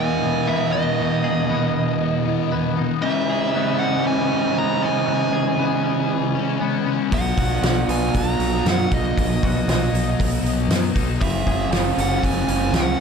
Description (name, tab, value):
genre	rock, shoegaze and dream pop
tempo	117 BPM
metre	4/4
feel	straight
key	B major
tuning	A4 = 438 Hz
part	nasal lead guitar with a parked wah	melody	0.0-13.0 s	D#5 to A#5	-27 LUFS	left 1 dB	overdrive, tape echo
part	twangy electric guitar	arpeggios	0.0-13.0 s	E3 to G#4	-30 LUFS	left 6 dB	analog chorus, tape echo
part	biting overdriven guitar	riff	0.0-13.0 s	E2 to F#4	-23 LUFS	right 10 dB	reverse reverb
part	thick fuzz guitar	riff	0.0-13.0 s	E2 to C#4	-24 LUFS	left 13 dB	distortion, analog chorus
part	growling fingered electric bass	bass	7.1-12.9 s	F#1 to F#2	-24 LUFS	equal	overdrive
part	loose indie drum kit	drums	7.1-12.9 s	hi-hat, kick drum, snare drum	-24 LUFS	right 1 dB	none
room	light reverb, small room ambience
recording	none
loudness	-18 LUFS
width	side -6 dB against mid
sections	0.0-13.0 A section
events	none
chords	0.0 Emaj7; 3.0 C#m7; 7.1 B; 11.2 F#m9